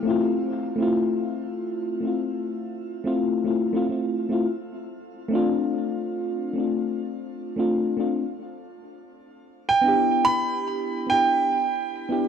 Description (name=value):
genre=chillout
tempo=106 BPM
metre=4/4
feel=swing 58% on 16ths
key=F lydian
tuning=A4 = 445 Hz
part: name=mellow FM electric piano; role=accompaniment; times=0.0-12.3 s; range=A3 to G4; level=-24 LUFS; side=moving between left 5 dB and right 1 dB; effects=chorus, auto-pan, shimmer reverb, tape echo
part: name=bright grand piano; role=melody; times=9.7-12.2 s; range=G5 to B5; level=-21 LUFS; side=right 4 dB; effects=shimmer reverb, tape echo
room=moderate scoring stage reverb, RT60 2.0 s, small room ambience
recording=dry, gritty hardware recording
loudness=-22 LUFS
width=side -7 dB against mid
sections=0.1-12.3 A section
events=none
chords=0.1 Fmaj7/A; 4.6 F6/A; 9.1 Em7